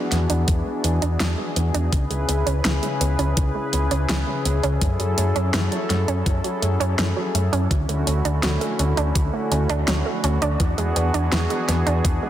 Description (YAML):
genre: synthwave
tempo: 83 BPM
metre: 4/4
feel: straight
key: F# minor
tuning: A4 = 440 Hz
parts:
  - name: warm analog pad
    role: sustained chords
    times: 0.0-12.3 s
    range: C#3 to B4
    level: -26 LUFS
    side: left 1 dB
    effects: chorus, sidechain pumping
  - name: analog pluck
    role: arpeggios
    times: 0.0-12.3 s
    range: E3 to D4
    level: -28 LUFS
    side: right 4 dB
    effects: chorus, tape echo
  - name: hollow-body short-scale picked electric bass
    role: bass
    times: 0.1-12.2 s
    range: C#2 to F#2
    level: -22 LUFS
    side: equal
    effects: tube saturation
  - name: pop drum kit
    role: drums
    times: 0.1-12.2 s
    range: hi-hat, snare drum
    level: -26 LUFS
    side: equal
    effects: overdrive
  - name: electronic kick drum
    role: drums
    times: 0.5-12.2 s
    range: none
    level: -22 LUFS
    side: equal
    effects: none
room: moderate lush hall reverb, RT60 2.1 s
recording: dense, heavily limited modern master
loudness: -19 LUFS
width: side -12 dB against mid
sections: 0.0-12.3 A section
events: filter sweep on synth arpeggio sound 0.0-12.3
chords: 0.0 E7; 1.9 C#m7; 4.8 F#m7; 7.7 Dmaj7; 10.6 E7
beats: 0.48 1.20 | 1.93 2.65 3.37 4.09 | 4.82 5.54 6.26 6.99 | 7.71 8.43 9.15 9.88 | 10.60 11.32 12.05